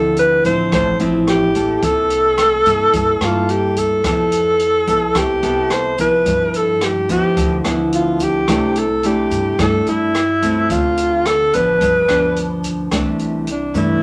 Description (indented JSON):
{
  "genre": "bossa nova",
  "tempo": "108 BPM",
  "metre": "4/4",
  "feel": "straight",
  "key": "C major",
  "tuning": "A4 = 437 Hz",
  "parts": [
    { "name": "breathy alto saxophone", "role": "melody", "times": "0.0-14.0 s", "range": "D4 to C5", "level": "-18 LUFS", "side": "equal", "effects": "none" },
    { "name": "nylon-string guitar", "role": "accompaniment", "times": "0.0-14.0 s", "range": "G2 to A4", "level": "-22 LUFS", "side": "equal", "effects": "none" },
    { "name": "upright bass", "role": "bass", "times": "0.0-14.0 s", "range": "G1 to G2", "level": "-29 LUFS", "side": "equal", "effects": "none" },
    { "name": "open jazz drum kit", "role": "drums", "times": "0.2-13.9 s", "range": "hi-hat, kick drum, rim click", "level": "-27 LUFS", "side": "equal", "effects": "none" },
    { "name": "tube shaker", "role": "percussion", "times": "0.2-14.0 s", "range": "none", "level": "-44 LUFS", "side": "equal", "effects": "none" }
  ],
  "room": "moderate studio reverb, RT60 0.6 s",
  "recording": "none",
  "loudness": "-16 LUFS",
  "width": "mono",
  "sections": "0.0-12.9 A section; 12.9-14.0 B section",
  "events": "alto saxophone solo 12.9-14.0",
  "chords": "0.0 Dm9; 1.8 C6; 4.0 Fmaj9#11; 6.3 G6; 8.5 C69; 10.7 Dm7; 11.8 G7; 12.9 C69",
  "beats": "0.17 0.72 1.28 | 1.83 2.38 2.94 3.49 | 4.05 4.60 5.15 5.71 | 6.26 6.82 7.37 7.93 | 8.48 9.03 9.59 10.14 | 10.70 11.25 11.81 12.36 | 12.91 13.47 14.02"
}